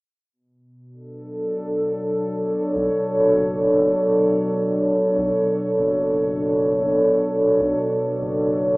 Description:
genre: ambient dub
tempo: 99 BPM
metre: 4/4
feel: straight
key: B minor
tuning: A4 = 444 Hz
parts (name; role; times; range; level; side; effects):
- warbly tape-like pad; sustained chords; 1.3-8.8 s; B2 to C#5; -19 LUFS; equal; chorus, built-in reverb
- soft dub sub bass; bass; 2.8-8.8 s; F#1 to B1; -34 LUFS; equal; none
room: wet spring reverb, RT60 2.7 s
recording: AM radio sound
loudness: -18 LUFS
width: side -24 dB against mid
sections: 0.3-5.2 A section; 5.2-8.8 B section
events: none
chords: 0.3 Bm9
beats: | 0.33 0.93 1.54 2.14 | 2.75 3.36 3.96 4.57 | 5.17 5.78 6.39 6.99 | 7.60 8.20

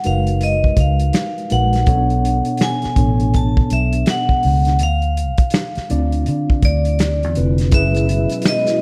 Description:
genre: R&B, neo-soul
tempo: 82 BPM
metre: 4/4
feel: swing 62% on 16ths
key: unclear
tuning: A4 = 440 Hz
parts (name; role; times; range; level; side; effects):
- vibraphone with hard mallets; melody; 0.0-8.8 s; D5 to A5; -24 LUFS; equal; none
- mellow tine electric piano; accompaniment; 0.0-8.8 s; B2 to D5; -24 LUFS; equal; none
- warm soul drum kit; drums; 0.0-8.8 s; finger snaps, hi-hat, kick drum, snare drum; -20 LUFS; equal; none
- vintage muted fingered electric bass; bass; 0.1-8.3 s; F1 to D3; -20 LUFS; equal; none
- soft string machine; sustained chords; 8.0-8.8 s; B2 to E4; -28 LUFS; equal; phaser, ensemble chorus
- maracas and finger snaps; percussion; 7.7-8.8 s; none; -34 LUFS; equal; none
room: light reverb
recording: none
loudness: -17 LUFS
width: mono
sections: 0.0-7.7 A section; 7.7-8.8 B section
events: none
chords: 0.0 G#m9; 1.9 Bm9; 4.8 Dm9; 7.7 F#9sus4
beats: 0.40 1.14 | 1.87 2.60 3.33 4.06 | 4.79 5.53 6.26 6.99 | 7.72 8.45

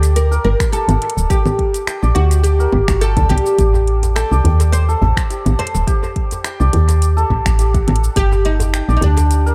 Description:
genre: organic downtempo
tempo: 105 BPM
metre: 4/4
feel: swing 54% on 16ths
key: G harmonic minor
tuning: A4 = 441 Hz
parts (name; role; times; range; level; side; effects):
- oud; melody; 0.0-9.5 s; D4 to C5; -23 LUFS; equal; dub echo
- santur; arpeggios; 0.0-9.5 s; D4 to G5; -25 LUFS; equal; dub echo
- woody FM bass; bass; 0.0-9.5 s; D1 to Eb2; -16 LUFS; equal; sidechain pumping
- afro-pop drum kit; drums; 0.0-9.5 s; congas, finger snaps, hi-hat, shaker; -25 LUFS; equal; dub echo
- electronic kick drum; drums; 0.6-8.3 s; none; -20 LUFS; equal; none
- djembe; percussion; 3.7-9.3 s; none; -25 LUFS; equal; none
room: light reverb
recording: echo-heavy mix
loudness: -15 LUFS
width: mono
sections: 0.0-9.5 A section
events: none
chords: 0.0 Gmadd9; 3.6 Am7b5; 8.2 Gmadd9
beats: 0.16 0.73 | 1.30 1.88 2.45 3.02 | 3.59 4.16 4.73 5.30 | 5.88 6.45 7.02 7.59 | 8.16 8.73 9.30

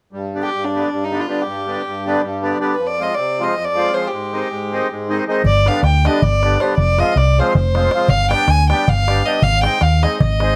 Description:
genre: balkan folk, Balkan wedding band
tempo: free time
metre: none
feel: none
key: G phrygian dominant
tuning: A4 = 441 Hz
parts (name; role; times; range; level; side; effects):
- accordion; accompaniment; 0.1-10.6 s; F2 to Ab4; -23 LUFS; equal; none
- warm violin; melody; 0.4-10.6 s; D4 to Ab5; -21 LUFS; equal; none
- hollow-body short-scale fingered electric bass; bass; 5.4-10.5 s; F1 to Eb2; -18 LUFS; equal; none
- darbuka; percussion; 5.4-10.5 s; none; -22 LUFS; equal; none
room: moderate studio ambience, RT60 0.5 s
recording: none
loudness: -17 LUFS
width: mono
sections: 0.1-5.4 A section; 5.4-10.6 B section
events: none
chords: 0.1 G; 2.8 Fm; 4.1 Ab; 5.4 G; 6.8 Fm; 8.1 G; 9.4 Ab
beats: free time

